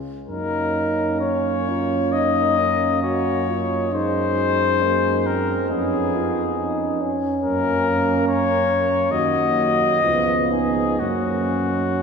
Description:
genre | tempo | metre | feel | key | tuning
classical, hymn-like piece for brass band | 67 BPM | 4/4 | uneven beats, rubato | F# major | A4 = 440 Hz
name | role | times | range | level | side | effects
warm cornet | melody | 0.3-12.0 s | F#4 to D#5 | -21 LUFS | left 4 dB | none
dark French horn section | second line | 0.3-12.0 s | A#3 to D#4 | -27 LUFS | right 7 dB | none
clear euphonium | accompaniment | 0.3-12.0 s | A#3 to F#4 | -26 LUFS | equal | none
clear trombone | accompaniment | 0.3-12.0 s | E#3 to B3 | -28 LUFS | right 4 dB | none
mellow tuba | bass | 0.3-12.0 s | C#2 to F#2 | -27 LUFS | equal | none
room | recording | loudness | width
wet cathedral reverb, RT60 4.9 s | heard from further back in the room | -18 LUFS | side -5 dB against mid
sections
0.0-12.0 A section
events
none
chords
0.3 F#; 3.9 G#7/F#; 5.7 C#7/E#; 7.4 F#; 9.1 D#m7; 10.0 C#7; 11.0 F#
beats
| 0.29 1.22 2.14 3.03 | 3.93 4.82 5.70 6.57 | 7.44 8.28 9.12 10.03 | 11.00 11.98

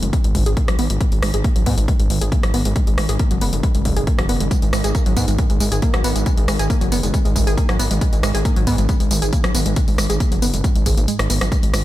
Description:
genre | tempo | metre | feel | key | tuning
driving peak-time techno | 137 BPM | 4/4 | straight | unclear | A4 = 439 Hz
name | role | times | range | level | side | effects
warbly dusty pluck | riff | 0.0-11.8 s | F#3 to G#4 | -24 LUFS | equal | chorus, sidechain pumping, ping-pong delay
gritty driven synth bass | bass | 0.0-11.8 s | F#1 to G#2 | -21 LUFS | equal | sidechain pumping
deep dark ambient pad | drone | 0.0-11.8 s | G#2 to D#3 | -28 LUFS | equal | chorus, built-in reverb, sidechain pumping
punchy analog drum machine | drums | 0.0-11.8 s | hi-hat, rim click, tambourine | -25 LUFS | left 1 dB | overdrive, studio reverb
electronic kick drum | drums | 0.1-11.6 s | none | -19 LUFS | equal | overdrive, studio reverb
room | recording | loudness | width
digital ambience | none | -16 LUFS | side -15 dB against mid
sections
0.0-11.8 A section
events
kick drops out 11.1-11.5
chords
0.0 G#5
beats
0.13 0.57 | 1.01 1.44 1.88 2.32 | 2.76 3.20 3.63 4.07 | 4.51 4.95 5.39 5.82 | 6.26 6.70 7.14 7.58 | 8.01 8.45 8.89 9.33 | 9.77 10.20 10.64 11.08 | 11.52

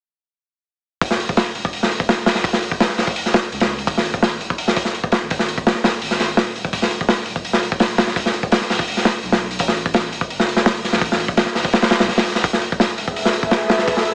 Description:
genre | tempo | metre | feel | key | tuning
drum and bass, jungle | 168 BPM | 4/4 | straight | F# minor | A4 = 440 Hz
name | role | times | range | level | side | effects
soft dub sub bass | bass | 1.0-14.1 s | D1 to C#2 | -37 LUFS | equal | none
crunchy breakbeat drum kit | drums | 1.0-14.1 s | hi-hat, kick drum, snare drum | -19 LUFS | equal | none
ethereal airy pad | sustained chords | 13.0-14.1 s | G#4 to E5 | -25 LUFS | equal | ensemble chorus, built-in reverb, tremolo, vintage 12-bit sampler grit
room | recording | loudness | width
light reverb, small room reverb | small speaker sound | -19 LUFS | mono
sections
1.0-14.1 A section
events
drop 1.0-14.1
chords
1.0 F#5; 3.9 G#5; 6.7 E5; 9.6 A7(no3); 12.4 F#m11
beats
| 1.02 1.37 1.73 2.09 | 2.45 2.80 3.16 3.52 | 3.87 4.23 4.59 4.95 | 5.30 5.66 6.02 6.37 | 6.73 7.09 7.45 7.80 | 8.16 8.52 8.87 9.23 | 9.59 9.95 10.30 10.66 | 11.02 11.37 11.73 12.09 | 12.45 12.80 13.16 13.52 | 13.87

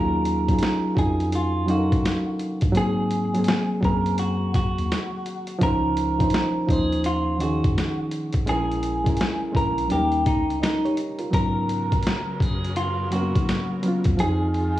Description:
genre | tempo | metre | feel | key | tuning
lo-fi hip hop | 84 BPM | 4/4 | swing 66% on 16ths | Eb minor | A4 = 442 Hz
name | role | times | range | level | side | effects
clean electric guitar | melody | 0.0-14.8 s | Eb4 to Bb4 | -27 LUFS | equal | spring reverb
bright reed electric piano | accompaniment | 0.0-14.8 s | Eb3 to F5 | -25 LUFS | equal | overdrive
mellow tine electric piano | bass | 0.0-14.8 s | A1 to Ab2 | -28 LUFS | equal | medium stereo tremolo
boom bap sampler-style drum kit | drums | 0.3-14.8 s | hi-hat, kick drum, snare drum | -24 LUFS | equal | none
rich studio string section | sustained chords | 11.3-14.8 s | Db3 to Bb4 | -34 LUFS | left 1 dB | none
room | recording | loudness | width
little or no reverb | cassette tape, studio reverb | -20 LUFS | side -14 dB against mid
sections
0.0-14.8 A section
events
none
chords
0.0 Ebm11; 2.8 Ab9; 5.6 Dbmaj9; 8.5 Bbm7b5; 9.9 Eb7; 11.3 Abm11; 14.2 Fm7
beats
0.62 1.33 2.04 | 2.76 3.47 4.19 4.90 | 5.62 6.33 7.04 7.76 | 8.47 9.19 9.90 10.62 | 11.33 12.04 12.76 13.47 | 14.19

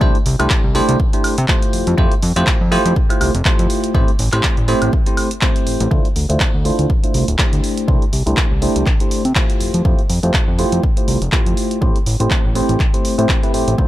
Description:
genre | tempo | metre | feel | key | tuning
filtered disco house | 122 BPM | 4/4 | swing 56% on 16ths | unclear | A4 = 440 Hz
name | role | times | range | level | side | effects
bell-like tine electric piano | accompaniment | 0.0-13.9 s | A3 to C5 | -19 LUFS | equal | phaser, sidechain pumping, low-pass filter
fat analog bass | bass | 0.0-13.9 s | D1 to C3 | -18 LUFS | equal | sidechain pumping, low-pass filter
electronic kick drum | drums | 0.0-13.9 s | none | -17 LUFS | equal | none
punchy analog drum machine | drums | 0.1-13.8 s | handclaps, hi-hat, woodblock | -22 LUFS | equal | none
room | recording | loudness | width
little or no reverb | none | -13 LUFS | side -14 dB against mid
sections
0.0-5.9 A section; 5.9-13.9 B section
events
drop 0.0-5.9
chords
0.0 C69; 1.7 Fmaj9; 3.9 Am7; 5.9 Dm9; 7.6 C69; 9.6 Fmaj9; 11.8 Am7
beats
| 0.01 0.51 1.00 1.49 | 1.98 2.47 2.96 3.46 | 3.95 4.44 4.93 5.42 | 5.92 6.41 6.90 7.39 | 7.88 8.38 8.87 9.36 | 9.85 10.34 10.83 11.32 | 11.82 12.31 12.80 13.29 | 13.79

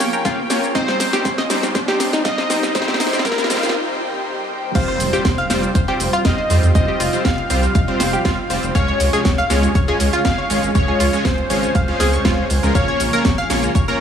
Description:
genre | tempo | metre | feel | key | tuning
progressive house | 120 BPM | 4/4 | straight | F minor | A4 = 439 Hz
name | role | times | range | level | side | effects
plucky unison lead | melody | 0.0-13.4 s | Bb4 to G5 | -24 LUFS | left 1 dB | dub echo
shimmering ambient pad | sustained chords | 0.0-14.0 s | C3 to Db5 | -27 LUFS | right 1 dB | chorus, built-in reverb, sidechain pumping
analog pluck | arpeggios | 0.0-13.9 s | Eb4 to F6 | -24 LUFS | equal | chorus, sidechain pumping, tape echo
supersaw stab | stabs | 0.0-14.0 s | G3 to F5 | -22 LUFS | equal | vintage 12-bit sampler grit, sidechain pumping, tape echo
house drum kit | drums | 0.0-14.0 s | crash cymbal, hi-hat, shaker, snare drum | -23 LUFS | right 1 dB | overdrive
riser and impact | sound effects | 0.0-6.8 s | none | -27 LUFS | equal | none
electronic kick drum | drums | 0.2-13.9 s | none | -19 LUFS | equal | none
round analog bass | bass | 4.8-13.9 s | F1 to F2 | -21 LUFS | equal | sidechain pumping
room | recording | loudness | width
light reverb | high-pass filter, small room ambience | -15 LUFS | side -8 dB against mid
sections
0.0-4.8 A section; 4.8-14.0 B section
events
build-up 0.0-4.8; drum fill 0.0-3.8; riser 0.0-3.8; filter sweep on ambient pad 0.0-4.8; break 3.8-4.8; drop 4.8-14.0; impact 4.8-6.8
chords
0.0 Bbm; 0.8 Cm; 4.8 Fsus2; 8.8 Db; 12.8 Bbm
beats
0.25 | 0.75 1.25 1.75 2.25 | 2.75 3.25 3.75 4.25 | 4.75 5.25 5.75 6.25 | 6.75 7.25 7.75 8.25 | 8.75 9.25 9.75 10.25 | 10.75 11.25 11.75 12.25 | 12.75 13.25 13.75

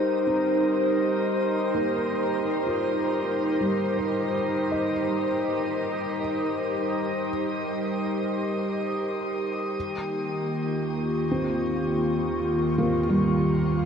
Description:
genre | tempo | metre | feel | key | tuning
ambient | free time | none | none | unclear | A4 = 441 Hz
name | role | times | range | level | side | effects
warbly tape-like pad | sustained chords | 0.0-13.9 s | Eb3 to Db6 | -24 LUFS | equal | chorus, built-in reverb
felt-muted upright piano | arpeggios | 0.0-13.9 s | G3 to Eb5 | -31 LUFS | equal | diffuse ambient delay
overtone-sweeping drone | drone | 0.0-9.9 s | G3 to Eb4 | -34 LUFS | right 1 dB | chorus, built-in reverb
round analog bass | bass | 9.7-13.9 s | Eb2 | -39 LUFS | equal | none
backwards swelling texture | texture | 11.7-13.9 s | F5 | -49 LUFS | right 2 dB | none
room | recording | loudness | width
wet shimmer reverb, RT60 8.1 s | dark, warm production | -23 LUFS | side -7 dB against mid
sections
0.0-9.8 A section; 9.8-13.9 B section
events
fade-in on felt piano 0.0-9.8; fade-in on synth drone 0.0-9.8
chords
0.0 Eb69/G; 9.8 Eb9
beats
free time

